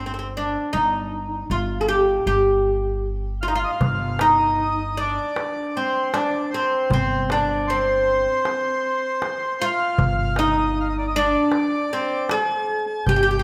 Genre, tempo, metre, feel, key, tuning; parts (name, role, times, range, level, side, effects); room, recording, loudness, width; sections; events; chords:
Arabic maqam ensemble; 78 BPM; 4/4; straight; G maqam bayati; A4 = 440 Hz
oud; melody; 0.0-13.4 s; C4 to Ab4+50c; -24 LUFS; equal
upright bass; bass; 0.0-13.4 s; G1; -30 LUFS; equal
accordion; second line; 3.4-13.4 s; C5 to Ab5+50c; -28 LUFS; equal
darbuka; percussion; 3.8-13.2 s; -28 LUFS; equal
wet recital hall reverb, RT60 1.7 s; -22 LUFS; mono
0.0-3.8 A section; 3.8-13.4 B section